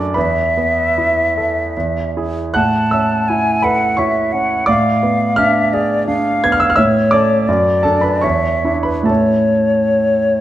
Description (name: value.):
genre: classical, romantic duo for flute and grand piano.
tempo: 66-87 BPM.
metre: 3/4.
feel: rubato.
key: A major.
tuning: A4 = 440 Hz.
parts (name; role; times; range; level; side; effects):
clear concert grand piano; accompaniment; 0.0-10.4 s; E2 to G#6; -15 LUFS; right 2 dB; none.
silver concert flute; melody; 0.2-10.4 s; C#5 to A5; -16 LUFS; left 1 dB; none.
room: moderate recital hall reverb, RT60 1.4 s.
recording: dark, warm production.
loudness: -13 LUFS.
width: side -13 dB against mid.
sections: 0.0-10.4 A section.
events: none.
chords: 0.2 Esus4; 1.7 E; 2.5 A; 4.7 G#dim7/A; 6.8 A; 7.5 D/F#; 8.2 E5; 9.1 A.